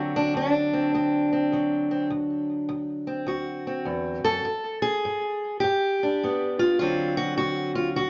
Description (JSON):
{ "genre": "acoustic country blues, solo or duo", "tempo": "102 BPM", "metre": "4/4", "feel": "swing 65% on 8ths", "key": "D mixolydian", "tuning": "A4 = 441 Hz", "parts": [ { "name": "fingerpicked steel-string acoustic guitar", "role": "solo", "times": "0.0-8.1 s", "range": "D2 to A4", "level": "-26 LUFS", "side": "equal", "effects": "tape echo" } ], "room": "moderate studio reverb, RT60 0.6 s", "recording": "nothing above 7.5 kHz", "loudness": "-26 LUFS", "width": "mono", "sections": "0.0-8.1 A section", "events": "none", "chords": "0.0 D7; 4.5 G; 6.8 D7" }